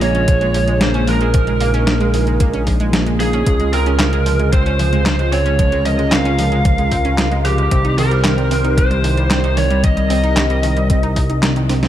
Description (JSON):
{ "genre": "synthwave", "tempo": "113 BPM", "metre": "4/4", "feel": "straight", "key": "unclear", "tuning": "A4 = 440 Hz", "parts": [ { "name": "lead guitar through a small cranked amp", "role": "melody", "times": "0.0-11.4 s", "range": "G4 to F5", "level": "-20 LUFS", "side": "right 2 dB", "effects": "overdrive, ping-pong delay" }, { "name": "brassy analog pad", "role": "sustained chords", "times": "0.0-11.9 s", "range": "C3 to C5", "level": "-24 LUFS", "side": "left 1 dB", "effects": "chorus, sidechain pumping" }, { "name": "analog pluck", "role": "arpeggios", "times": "0.0-11.9 s", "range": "Eb3 to Eb4", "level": "-24 LUFS", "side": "right 3 dB", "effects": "chorus, ping-pong delay" }, { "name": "fat analog bass", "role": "bass", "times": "0.0-11.9 s", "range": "Bb1 to Db2", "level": "-17 LUFS", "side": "equal", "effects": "tube saturation" }, { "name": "detuned 8-bit digital drum machine", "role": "drums", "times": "0.0-11.9 s", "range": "handclaps, hi-hat, snare drum", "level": "-21 LUFS", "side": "equal", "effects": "none" }, { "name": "electronic kick drum", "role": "drums", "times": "0.3-11.3 s", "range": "none", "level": "-16 LUFS", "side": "equal", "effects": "none" } ], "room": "light reverb", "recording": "dark, warm production", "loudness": "-13 LUFS", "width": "side -11 dB against mid", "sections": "0.0-11.9 A section", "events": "drum fill 11.7", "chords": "0.0 Bbm7; 3.5 Dbmaj7; 7.7 Cm" }